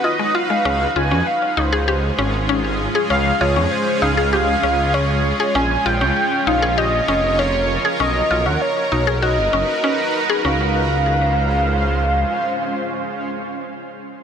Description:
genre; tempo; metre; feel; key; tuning
IDM; 98 BPM; 4/4; straight; Db major; A4 = 440 Hz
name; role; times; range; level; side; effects
warm velvety synth lead; melody; 0.0-13.7 s; C5 to Ab5; -21 LUFS; equal; chorus, digital delay
granular cloud pad; sustained chords; 0.0-13.7 s; Ab3 to Db5; -22 LUFS; right 1 dB; built-in reverb
mallet-like synth pluck; arpeggios; 0.0-10.7 s; Ab3 to Ab4; -22 LUFS; left 3 dB; chorus, phaser, cassette tape, digital delay
dark detuned saw bass; bass; 0.7-12.2 s; F1 to F2; -21 LUFS; right 1 dB; tube saturation
room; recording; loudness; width
light reverb; none; -16 LUFS; side -7 dB against mid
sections
0.0-10.4 A section; 10.4-12.9 B section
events
none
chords
0.0 Cb; 0.7 Db; 5.6 Bbm; 8.0 Cbmaj7; 10.4 Dbmaj7

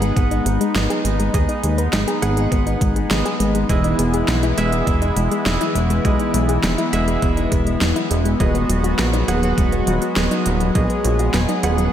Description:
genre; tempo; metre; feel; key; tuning
synthwave; 102 BPM; 4/4; straight; unclear; A4 = 435 Hz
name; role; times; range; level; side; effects
chorused pulse-width pad; sustained chords; 0.0-11.9 s; E3 to G#4; -22 LUFS; left 1 dB; sidechain pumping
soft round pluck; arpeggios; 0.0-11.8 s; F#3 to B4; -25 LUFS; left 3 dB; chorus, cassette tape, ping-pong delay
bright concert grand piano; stabs; 0.0-11.9 s; G#3 to F#5; -25 LUFS; right 3 dB; ping-pong delay, slapback echo
fat analog bass; bass; 0.0-11.9 s; D#1 to D#2; -20 LUFS; equal; none
pop drum kit; drums; 0.0-11.9 s; hi-hat, snare drum; -25 LUFS; right 1 dB; studio reverb, slapback echo
electronic kick drum; drums; 0.2-10.9 s; none; -21 LUFS; equal; overdrive, studio reverb
room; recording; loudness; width
moderate lush hall reverb, RT60 2.0 s; big arena sound; -16 LUFS; side -10 dB against mid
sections
0.0-11.9 A section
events
none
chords
0.0 G#m; 3.7 Emaj7; 8.4 B6/D#

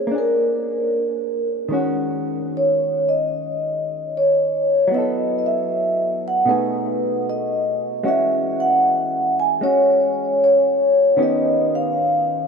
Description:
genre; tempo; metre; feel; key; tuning
jazz ballad; 76 BPM; 4/4; swing 69% on 8ths; Eb minor; A4 = 440 Hz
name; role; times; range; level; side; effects
vibraphone with medium mallets; melody; 0.0-12.5 s; Ab4 to G#5; -18 LUFS; equal; none
hollow-body jazz guitar; accompaniment; 0.0-12.5 s; B2 to A4; -25 LUFS; equal; none
room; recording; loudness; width
wet huge ambient reverb, RT60 6.6 s; heard from further back in the room; -17 LUFS; side -5 dB against mid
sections
0.0-1.7 A section; 1.7-12.5 B section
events
none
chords
0.1 Bb7; 1.7 Ebm7; 4.9 Gbm7; 6.5 B6; 8.0 E69; 11.2 Eb7b13

